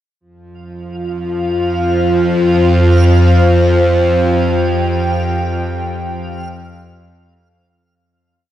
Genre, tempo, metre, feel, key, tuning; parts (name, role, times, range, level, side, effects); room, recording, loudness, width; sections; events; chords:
dark ambient drone; free time; A4 = 440 Hz
dark analog pad; sustained chords; 1.0-8.0 s; F4 to G5; -16 LUFS; equal; chorus
bowed-like drone; drone; 1.0-8.1 s; F2 to F3; -14 LUFS; equal; built-in reverb
backwards swelling texture; texture; 1.0-8.0 s; F5; -26 LUFS; equal; built-in reverb, analog chorus
wet lush hall reverb, RT60 3.1 s; dreamy mix soaked in reverb; -11 LUFS; side -12 dB against mid
0.2-8.0 A section
fade-out 4.1-8.0
0.2 Fsus2